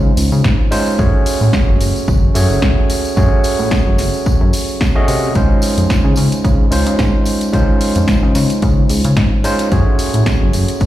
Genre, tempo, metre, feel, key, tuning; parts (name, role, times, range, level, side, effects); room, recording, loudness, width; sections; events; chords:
nu-disco, nu disco; 110 BPM; 4/4; swing 55% on 16ths; Db major; A4 = 440 Hz
overdriven tine electric piano; accompaniment; 0.0-10.9 s; Ab3 to Eb5; -17 LUFS; right 2 dB; sidechain pumping, ping-pong delay
chorused synth bass; bass; 0.0-10.9 s; Gb1 to Db3; -15 LUFS; equal
house drum kit; drums; 0.2-10.9 s; hi-hat, snare drum; -22 LUFS; equal
tambourine; percussion; 0.2-10.9 s; -30 LUFS; equal
electronic kick drum; drums; 0.4-10.9 s; -15 LUFS; equal
digital ambience; played on a big sound system in a bare room, large studio reverb; -11 LUFS; side -14 dB against mid
0.0-10.9 A section
0.0 Dbmaj7; 1.0 Gbmadd9; 5.4 Dbmaj7; 9.7 Gbmadd9